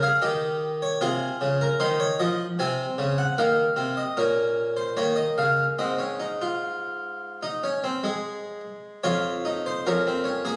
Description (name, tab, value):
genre	classical, baroque-style 3-part fugue for harpsichord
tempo	75 BPM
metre	4/4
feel	straight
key	Db major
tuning	A4 = 439 Hz
part	harpsichord	solo	0.0-10.6 s	F2 to Ab5	-26 LUFS	equal	none
room	wet recital hall reverb, RT60 1.4 s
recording	recorded on a phone in the room, club reverb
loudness	-26 LUFS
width	mono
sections	0.0-9.1 A section; 9.1-10.6 B section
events	none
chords	0.0 Cm (rootless); 1.0 Ab/C; 4.2 Bbmadd11; 5.8 Ab; 9.1 Db/F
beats	0.22 1.01 1.80 | 2.59 3.38 4.18 4.98 | 5.79 6.61 7.43 8.24 | 9.05 9.86